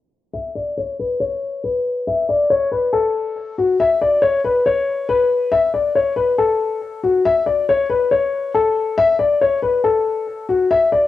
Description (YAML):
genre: hip hop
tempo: 139 BPM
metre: 4/4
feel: half-time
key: unclear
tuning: A4 = 440 Hz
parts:
  - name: dark concert grand piano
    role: solo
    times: 0.3-11.1 s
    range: F#4 to E5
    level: -16 LUFS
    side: left 3 dB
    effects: cassette tape
room: moderate studio reverb, RT60 0.6 s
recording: home recording on cassette, low-pass filter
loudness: -16 LUFS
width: side -13 dB against mid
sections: 0.3-3.8 A section; 3.8-11.1 B section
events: filter sweep 0.3-3.8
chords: none